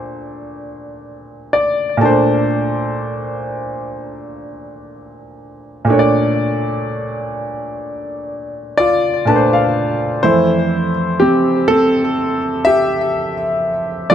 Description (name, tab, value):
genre	R&B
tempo	62 BPM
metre	4/4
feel	swing 54% on 16ths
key	unclear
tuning	A4 = 439 Hz
part	clear concert grand piano	solo	0.0-14.1 s	F2 to A5	-15 LUFS	equal	digital delay
room	light reverb, small room ambience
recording	none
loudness	-14 LUFS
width	side -9 dB against mid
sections	0.0-10.2 A section; 10.2-14.1 B section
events	grand piano fill 1.0-2.5, 8.8-10.2; grand piano solo 10.2-14.1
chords	0.0 Bbmaj9; 10.2 Fmaj9